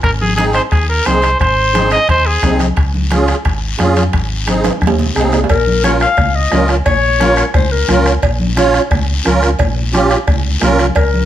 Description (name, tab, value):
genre	latin, cumbia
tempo	176 BPM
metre	4/4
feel	straight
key	unclear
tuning	A4 = 442 Hz
part	clear trumpet	melody	0.0-2.6 s	Ab4 to Eb5	-14 LUFS	right 1 dB	plate reverb
part	fingered electric bass	bass	0.0-11.3 s	Ab1 to F2	-17 LUFS	equal	none
part	bombo	percussion	0.0-11.1 s	none	-19 LUFS	equal	none
part	congas	percussion	0.0-11.3 s	none	-21 LUFS	left 1 dB	none
part	guiro	percussion	0.0-11.3 s	none	-26 LUFS	left 6 dB	none
part	timbales and cowbell	percussion	0.0-11.1 s	none	-22 LUFS	right 5 dB	none
part	musette accordion	accompaniment	0.4-10.9 s	C4 to Db5	-16 LUFS	right 2 dB	none
part	warm clarinet	second line	5.5-8.1, 11.0-11.3 s	Bb4 to F5	-15 LUFS	left 5 dB	none
room	moderate studio reverb, RT60 0.9 s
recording	none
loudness	-11 LUFS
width	side -11 dB against mid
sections	0.0-5.5 A section; 5.5-11.3 B section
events	drum fill 4.5-5.5; clarinet solo 5.5-11.3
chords	0.0 Ab; 2.8 Db; 4.1 Ab; 5.5 Bbm